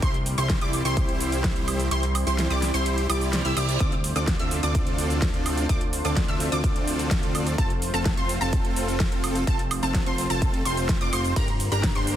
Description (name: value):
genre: EDM, festival progressive house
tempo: 127 BPM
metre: 4/4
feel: straight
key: F major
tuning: A4 = 444 Hz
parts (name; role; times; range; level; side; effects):
- lush unison pad; sustained chords; 0.0-12.2 s; G3 to C5; -33 LUFS; right 1 dB; chorus, phaser, sidechain pumping
- wide unison pluck; arpeggios; 0.0-12.2 s; A5 to E6; -31 LUFS; equal; ensemble chorus, sidechain pumping, tape echo
- dense compressed supersaw; riff; 0.0-12.2 s; C4 to E5; -29 LUFS; equal; sidechain pumping, tape echo
- fat analog bass; bass; 0.0-12.2 s; F1 to D2; -28 LUFS; equal; sidechain pumping
- big-room dance drum kit; drums; 0.0-12.2 s; cabasa, hi-hat, ride cymbal, snare drum, woodblock; -31 LUFS; right 1 dB; overdrive, small room ambience
- electronic kick drum; drums; 0.0-11.9 s; none; -25 LUFS; equal; small room ambience
- reverse cymbal; sound effects; 3.1-3.8 s; none; -36 LUFS; right 8 dB; none
room: light reverb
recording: dense, heavily limited modern master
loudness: -22 LUFS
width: side -11 dB against mid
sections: 0.0-12.2 A section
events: kick drops out 1.9-3.8; reverse cymbal 3.1-3.8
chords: 0.0 C; 3.8 Dm7; 7.6 F; 11.4 Gm